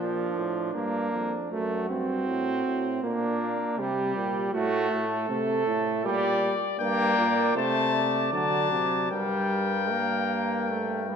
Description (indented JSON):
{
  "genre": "classical, imitative canzona for brass ensemble",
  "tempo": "79 BPM",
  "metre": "4/4",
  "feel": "straight",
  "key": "G minor from 6.1 s",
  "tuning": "A4 = 440 Hz",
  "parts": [
    { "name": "mellow flugelhorn", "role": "second line", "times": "0.0-11.2 s", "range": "D4 to D5", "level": "-31 LUFS", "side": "right 3 dB", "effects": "none" },
    { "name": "brilliant trombone", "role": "accompaniment", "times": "0.0-11.2 s", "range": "F3 to C4", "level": "-28 LUFS", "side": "right 1 dB", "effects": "none" },
    { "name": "warm euphonium", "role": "bass", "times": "0.0-11.2 s", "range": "F2 to D3", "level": "-31 LUFS", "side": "right 1 dB", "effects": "none" },
    { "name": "warm trumpet", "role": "melody", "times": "6.0-11.2 s", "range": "D5 to A5", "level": "-28 LUFS", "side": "left 8 dB", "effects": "none" }
  ],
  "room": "wet concert hall reverb, RT60 1.8 s",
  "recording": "none",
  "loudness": "-24 LUFS",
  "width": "side -7 dB against mid",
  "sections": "0.0-11.2 A section",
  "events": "none",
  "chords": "0.0 Bb; 1.5 F#dim; 3.0 Gm/Bb; 4.5 F#dim/A; 6.1 Gm/Bb; 7.6 Amadd11/C; 8.3 D; 9.1 Gm",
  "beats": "0.75 1.51 2.27 | 3.03 3.78 4.54 5.30 | 6.05 6.80 7.56 8.33 | 9.12 9.91 10.69"
}